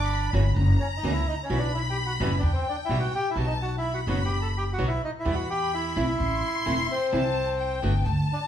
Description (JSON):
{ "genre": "tango", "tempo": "128 BPM", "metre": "4/4", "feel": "rubato", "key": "E minor", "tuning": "A4 = 442 Hz", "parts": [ { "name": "bandoneon", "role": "melody", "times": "0.0-8.4 s", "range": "C4 to A5", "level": "-29 LUFS", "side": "equal", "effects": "none" }, { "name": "warm studio violin section", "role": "second line", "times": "0.0-8.5 s", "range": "G5 to C6", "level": "-32 LUFS", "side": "left 3 dB", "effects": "none" }, { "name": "upright bass", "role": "bass", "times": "0.0-8.3 s", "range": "E1 to E2", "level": "-26 LUFS", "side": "equal", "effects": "none" }, { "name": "nylon-string guitar", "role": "accompaniment", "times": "0.3-7.9 s", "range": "B2 to F#4", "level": "-31 LUFS", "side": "right 2 dB", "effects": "none" } ], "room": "wet large studio reverb, RT60 0.9 s", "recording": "band playing live in one room, vinyl crackle", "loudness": "-23 LUFS", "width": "side -10 dB against mid", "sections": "0.0-8.5 A section", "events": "none", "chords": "0.0 Cadd9/G (rootless); 0.6 F#7; 1.5 Bsus4; 2.4 Emadd9; 3.4 B; 5.3 Em; 6.2 Am; 7.1 C", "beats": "0.10 0.56 1.03 | 1.50 1.96 2.43 2.90 | 3.37 3.84 4.31 4.79 | 5.26 5.73 6.20 6.67 | 7.13 7.60 8.06" }